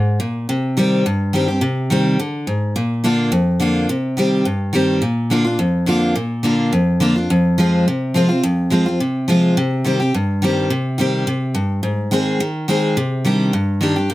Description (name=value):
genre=bluegrass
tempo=211 BPM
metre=4/4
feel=straight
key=C minor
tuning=A4 = 440 Hz
part: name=picked steel-string acoustic guitar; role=solo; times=0.0-14.1 s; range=F2 to Ab4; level=-15 LUFS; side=equal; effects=none
room=light reverb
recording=close, detailed microphones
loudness=-15 LUFS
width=side -16 dB against mid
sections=0.0-5.0 A section; 5.0-14.1 B section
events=none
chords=0.5 Cm; 2.8 Bb; 3.9 Cm; 5.0 Bb; 7.3 Fm; 9.6 Cm; 11.8 Ab; 13.0 Cmadd9